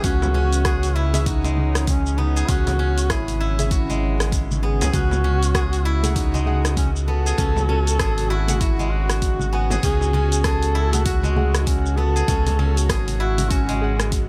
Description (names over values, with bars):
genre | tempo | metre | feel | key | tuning
organic downtempo | 98 BPM | 4/4 | swing 60% on 16ths | unclear | A4 = 441 Hz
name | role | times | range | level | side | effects
mellow duduk | melody | 0.0-14.1 s | C#4 to A4 | -29 LUFS | equal | delay
deep mellow chord stab | accompaniment | 0.0-14.3 s | A3 to G#5 | -34 LUFS | equal | chorus, sidechain pumping, delay
bowed-like drone | sustained chords | 0.0-14.3 s | C#3 to F#4 | -33 LUFS | equal | built-in reverb, sidechain pumping
steel-string zither | arpeggios | 0.0-14.3 s | G#3 to G#4 | -32 LUFS | equal | delay
round analog bass | bass | 0.0-14.3 s | G#1 to C#2 | -23 LUFS | equal | sidechain pumping
deep house drum kit | drums | 0.0-14.3 s | hi-hat, rim click, shaker | -30 LUFS | equal | none
electronic kick drum | drums | 0.0-14.3 s | none | -25 LUFS | equal | none
congas | percussion | 0.0-13.8 s | none | -32 LUFS | equal | none
room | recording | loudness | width
digital ambience | none | -20 LUFS | mono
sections
0.0-14.3 A section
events
none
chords
0.0 C#m; 4.9 F#madd9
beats
| 0.04 0.65 1.26 1.87 | 2.49 3.10 3.71 4.32 | 4.93 5.55 6.16 6.77 | 7.38 8.00 8.61 9.22 | 9.83 10.45 11.06 11.67 | 12.28 12.89 13.51 14.12